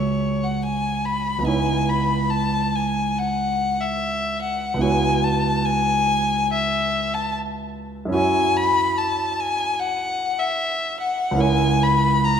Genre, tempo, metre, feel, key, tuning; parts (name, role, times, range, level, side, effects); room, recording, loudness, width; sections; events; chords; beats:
classical, impressionist duo for violin and grand piano; 72 BPM; 4/4; rubato; C# minor; A4 = 441 Hz
rich violin; melody; 0.0-12.4 s; C#5 to B5; -21 LUFS; left 3 dB
clear concert grand piano; accompaniment; 0.0-12.4 s; C#2 to C#5; -22 LUFS; right 3 dB
wet concert hall reverb, RT60 1.9 s; -19 LUFS; side -8 dB against mid
0.0-12.4 A section
0.0 E69/C# (rootless); 1.5 C#m9; 4.8 Bsus24/C#; 8.2 F#5; 11.4 C#m6
0.66 | 1.49 2.33 3.18 4.02 | 4.84 5.67 6.51 7.34 | 8.16 8.98 9.79 10.60 | 11.42 12.25